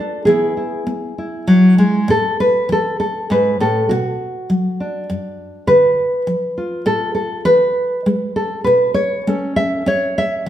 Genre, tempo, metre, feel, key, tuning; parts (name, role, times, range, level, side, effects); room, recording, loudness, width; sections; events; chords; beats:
folk, solo fingerstyle acoustic guitar; 100 BPM; 3/4; straight; A major; A4 = 441 Hz
nylon-string guitar; solo; 0.0-10.5 s; F#2 to E5; -14 LUFS; equal
wet large studio reverb, RT60 1.4 s; band playing live in one room; -14 LUFS; side -11 dB against mid
0.0-2.1 A section; 2.1-10.5 B section
0.3 E; 2.1 A5; 3.9 Bm; 5.7 Dm; 7.5 E; 9.3 A
| 0.28 0.88 1.49 | 2.09 2.70 3.30 | 3.90 4.49 5.09 | 5.68 6.28 6.87 | 7.46 8.06 8.66 | 9.27 9.87 10.46